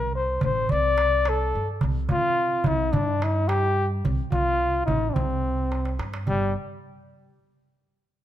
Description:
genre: Arabic maqam ensemble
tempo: 108 BPM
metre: 4/4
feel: straight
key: C maqam rast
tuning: A4 = 439 Hz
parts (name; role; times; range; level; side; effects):
- breathy flugelhorn; melody; 0.0-6.5 s; G3 to D5; -24 LUFS; left 2 dB; none
- upright bass; bass; 0.0-6.5 s; G1 to C3; -27 LUFS; right 1 dB; none
- darbuka; percussion; 0.0-6.5 s; none; -29 LUFS; right 1 dB; none
room: light reverb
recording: minimal, uncompressed stereo recording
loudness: -22 LUFS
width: side -12 dB against mid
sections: 0.0-6.3 A section; 6.3-8.2 B section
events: drum fill 5.7-6.3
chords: none

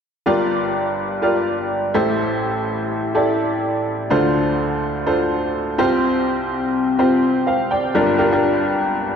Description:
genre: pop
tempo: 125 BPM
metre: 4/4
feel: swing 56% on 16ths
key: unclear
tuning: A4 = 439 Hz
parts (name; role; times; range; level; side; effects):
- bright upright piano; accompaniment; 0.3-9.2 s; G1 to G5; -17 LUFS; equal; none
room: wet scoring stage reverb, RT60 1.8 s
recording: dark, warm production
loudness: -17 LUFS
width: side -7 dB against mid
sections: 0.3-8.0 A section; 8.0-9.2 B section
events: none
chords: 0.3 Gm7; 1.9 Am7; 4.1 Dm7; 5.8 Csus4; 8.0 Gm7

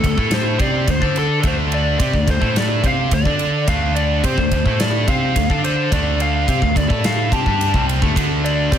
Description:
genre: hard rock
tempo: 107 BPM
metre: 4/4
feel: straight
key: D minor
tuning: A4 = 440 Hz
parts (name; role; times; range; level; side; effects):
- biting lead guitar; melody; 0.0-8.8 s; A4 to A5; -22 LUFS; equal; overdrive
- heavy high-gain guitar; riff; 0.0-8.8 s; C3 to D5; -24 LUFS; left 14 dB; distortion
- high-gain distorted guitar; riff; 0.0-8.8 s; C3 to D5; -23 LUFS; right 13 dB; distortion
- picked electric bass; bass; 0.0-8.8 s; C2 to D3; -21 LUFS; equal; none
- gated 80s drum kit; drums; 0.0-8.8 s; kick drum, ride cymbal, snare drum; -21 LUFS; equal; none
room: little or no reverb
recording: none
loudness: -15 LUFS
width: side -9 dB against mid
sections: 0.0-8.8 A section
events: none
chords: 0.0 Dm

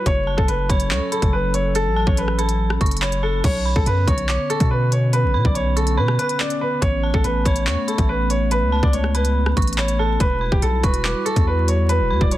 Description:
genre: hip hop, drill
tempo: 142 BPM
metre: 4/4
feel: half-time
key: B minor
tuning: A4 = 440 Hz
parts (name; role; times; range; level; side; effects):
- bright upright piano; melody; 0.0-12.4 s; G4 to D5; -23 LUFS; equal; low-pass filter
- dark analog pad; sustained chords; 0.0-12.4 s; D3 to A4; -27 LUFS; left 1 dB; chorus
- long sustained 808-style bass; bass; 0.1-12.4 s; D1 to B2; -20 LUFS; equal; none
- drill drum kit; drums; 0.1-12.4 s; crash cymbal, handclaps, hi-hat, kick drum, rim click; -21 LUFS; equal; none
- dark detuned synth bell; second line; 0.3-12.4 s; A5 to F#6; -30 LUFS; right 3 dB; chorus, ping-pong delay
room: little or no reverb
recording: dense, heavily limited modern master, vinyl crackle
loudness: -17 LUFS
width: side -14 dB against mid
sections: 0.0-3.4 A section; 3.4-12.4 A section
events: none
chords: 0.1 F#m; 3.4 Bmadd9; 6.8 Aadd9; 10.2 Emadd9

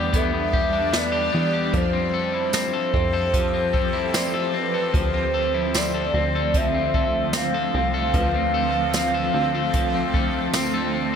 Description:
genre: dream pop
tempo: 75 BPM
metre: 4/4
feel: straight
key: D dorian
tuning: A4 = 442 Hz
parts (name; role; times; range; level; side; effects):
- warbly nostalgic lead; melody; 0.0-10.9 s; B4 to F5; -25 LUFS; right 1 dB; chorus, tremolo, ping-pong delay
- shimmering ambient pad; sustained chords; 0.0-11.2 s; D3 to A4; -27 LUFS; right 2 dB; chorus, built-in reverb, phaser
- electric guitar at the edge of break-up; arpeggios; 0.0-11.2 s; F3 to A4; -25 LUFS; left 5 dB; wide subtle chorus, ping-pong delay
- plucky analog bass; bass; 0.0-11.2 s; C2 to F2; -29 LUFS; right 1 dB; none
- synth chime; texture; 0.0-11.2 s; A4 to G5; -38 LUFS; right 1 dB; none
- jazz brush drum kit; drums; 0.1-10.7 s; hi-hat, kick drum, snare drum, tambourine; -25 LUFS; right 1 dB; none
room: moderate plate reverb, RT60 3.5 s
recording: bright 1980s-style digital production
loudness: -20 LUFS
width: side -7 dB against mid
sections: 0.0-11.2 A section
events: none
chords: 0.0 Em7; 1.7 Fmaj7; 4.9 Dm9

